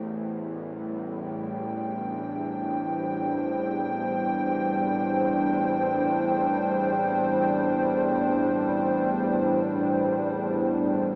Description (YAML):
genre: dark ambient drone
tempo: free time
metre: none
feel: none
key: A minor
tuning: A4 = 439 Hz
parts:
  - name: dark analog pad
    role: sustained chords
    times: 0.0-11.2 s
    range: A2 to G5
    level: -27 LUFS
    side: equal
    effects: chorus
  - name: bowed-like drone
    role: drone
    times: 0.0-11.2 s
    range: A1 to E2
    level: -34 LUFS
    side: equal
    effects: built-in reverb
room: wet huge ambient reverb, RT60 8.6 s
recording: small speaker sound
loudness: -26 LUFS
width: mono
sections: 0.0-11.2 A section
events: none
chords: 0.0 Am7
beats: free time